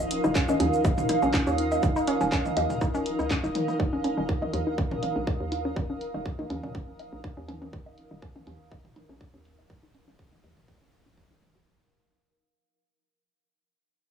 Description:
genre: minimal techno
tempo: 122 BPM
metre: 4/4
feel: swing 54% on 16ths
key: unclear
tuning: A4 = 444 Hz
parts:
  - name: hollow square pluck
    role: riff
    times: 0.0-11.6 s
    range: Db4 to Eb5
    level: -30 LUFS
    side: equal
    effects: chorus, sidechain pumping, analog delay
  - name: hollow knocking FM bass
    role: bass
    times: 0.0-11.6 s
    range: Eb1 to Eb2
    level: -34 LUFS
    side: right 1 dB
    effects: sidechain pumping
  - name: granular cloud pad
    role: texture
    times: 0.0-11.7 s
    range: Eb4 to Eb6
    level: -29 LUFS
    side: right 1 dB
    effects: built-in reverb, sidechain pumping
  - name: swarming drone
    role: texture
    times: 0.0-11.7 s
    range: F3 to Bb4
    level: -42 LUFS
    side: right 2 dB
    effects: none
  - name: punchy analog drum machine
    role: drums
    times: 0.1-11.5 s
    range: handclaps, hi-hat, shaker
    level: -35 LUFS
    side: equal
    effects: low-pass filter on perc, low-pass filter on hats, low-pass filter on snare, low-pass filter on room
  - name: filtered dub chord stab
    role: stabs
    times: 0.2-10.4 s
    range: Eb4 to Eb5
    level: -37 LUFS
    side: left 3 dB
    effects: none
  - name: electronic kick drum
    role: drums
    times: 0.4-11.3 s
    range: none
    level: -28 LUFS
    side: equal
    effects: none
  - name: electronic toms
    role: percussion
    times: 0.5-11.6 s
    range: none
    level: -37 LUFS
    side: left 1 dB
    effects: analog delay
room: light reverb, digital ambience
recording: dry, gritty hardware recording, small room ambience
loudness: -24 LUFS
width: side -7 dB against mid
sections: 0.0-11.7 A section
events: fade-out 0.0-11.7; filter sweep on synth arpeggio sound 0.0-11.7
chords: 0.0 Eb5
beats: 0.35 0.85 1.34 | 1.83 2.32 2.81 3.31 | 3.80 4.29 4.78 5.27 | 5.76 6.26 6.75 7.24 | 7.73 8.22 8.71 9.21 | 9.70 10.19 10.68 11.17

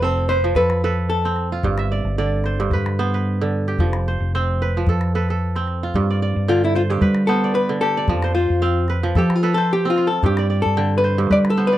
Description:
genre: west african traditional, West African string and xylophone music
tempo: 112 BPM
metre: 4/4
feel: swing 55% on 16ths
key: G mixolydian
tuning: A4 = 441 Hz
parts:
  - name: hollow-body jazz guitar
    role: melody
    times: 0.0-1.5, 6.5-11.8 s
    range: E4 to D5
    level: -20 LUFS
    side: left 2 dB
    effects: none
  - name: kora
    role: arpeggios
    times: 0.0-11.8 s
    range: G2 to G5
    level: -23 LUFS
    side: right 4 dB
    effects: none
  - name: hollow-body short-scale fingered electric bass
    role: bass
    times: 0.0-11.8 s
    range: F1 to G3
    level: -20 LUFS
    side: equal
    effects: none
  - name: calabash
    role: percussion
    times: 0.3-11.6 s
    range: none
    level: -23 LUFS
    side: left 1 dB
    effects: none
room: little or no reverb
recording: dry, close 1970s-style studio recording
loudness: -17 LUFS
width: side -13 dB against mid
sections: 0.0-5.9 A section; 5.9-11.8 B section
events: hollow-body jazz guitar solo 5.9-11.8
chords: 0.0 F; 1.6 G; 3.8 F; 5.9 G; 8.1 F; 10.2 G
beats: 0.02 0.56 1.10 | 1.64 2.18 2.72 3.26 | 3.80 4.33 4.87 5.41 | 5.95 6.48 7.02 7.56 | 8.09 8.63 9.16 9.70 | 10.23 10.77 11.31

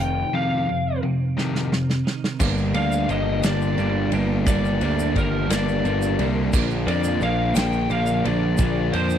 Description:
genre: indie rock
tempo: 58 BPM (dotted quarters)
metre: 6/8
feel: straight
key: G minor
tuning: A4 = 440 Hz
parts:
  - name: lead guitar through a small cranked amp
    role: melody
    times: 0.0-9.2 s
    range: Bb4 to G5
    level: -26 LUFS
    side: left 2 dB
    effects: overdrive
  - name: twelve-string electric guitar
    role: riff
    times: 0.0-9.2 s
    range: F2 to D4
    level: -27 LUFS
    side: right 9 dB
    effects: ensemble chorus
  - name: fuzz picked electric bass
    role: bass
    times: 0.0-9.2 s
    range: F1 to F2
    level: -24 LUFS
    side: equal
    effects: overdrive
  - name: overdriven electric guitar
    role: riff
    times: 0.3-9.2 s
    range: F2 to D4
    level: -26 LUFS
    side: left 6 dB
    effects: none
  - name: loose indie drum kit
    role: drums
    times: 1.4-9.1 s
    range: crash cymbal, kick drum, ride cymbal, snare drum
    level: -27 LUFS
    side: right 1 dB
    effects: none
  - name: tube shaker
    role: percussion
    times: 2.4-9.2 s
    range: none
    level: -39 LUFS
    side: right 12 dB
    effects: none
room: little or no reverb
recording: dry, close 1970s-style studio recording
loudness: -19 LUFS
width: side -9 dB against mid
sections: 0.0-2.4 A section; 2.4-9.2 B section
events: lead electric guitar solo 0.0-2.4; drum fill 1.4-2.4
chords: 0.0 F5; 2.4 Gm; 6.5 Bb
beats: | 0.34 1.37 | 2.40 3.44 | 4.47 5.50 | 6.53 7.56 | 8.59

